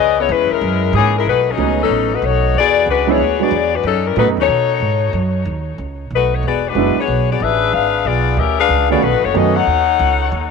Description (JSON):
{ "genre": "jazz, big band swing", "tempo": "185 BPM", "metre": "4/4", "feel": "swing 64% on 8ths", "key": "B mixolydian", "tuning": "A4 = 442 Hz", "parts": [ { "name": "warm saxophone section", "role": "melody", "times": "0.0-10.5 s", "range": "E3 to F#5", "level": "-15 LUFS", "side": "left 10 dB", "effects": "tape echo" }, { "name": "upright bass", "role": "bass", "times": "0.0-10.5 s", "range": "E1 to B2", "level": "-20 LUFS", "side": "right 3 dB", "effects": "none" }, { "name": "warm baby grand piano", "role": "accompaniment", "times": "1.6-4.4, 6.8-9.5 s", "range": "D#3 to F#4", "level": "-18 LUFS", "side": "right 16 dB", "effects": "none" } ], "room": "moderate spring reverb, RT60 2.6 s", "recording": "1960s-style stereo with parts hard left and right", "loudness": "-13 LUFS", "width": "side -5 dB against mid", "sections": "0.0-1.3 A section; 1.3-10.5 B section", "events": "none", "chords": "0.0 C#m7; 0.6 F#9; 1.3 B9; 2.5 E9; 3.8 B9; 6.4 E9; 7.7 Fdim7; 9.0 B9" }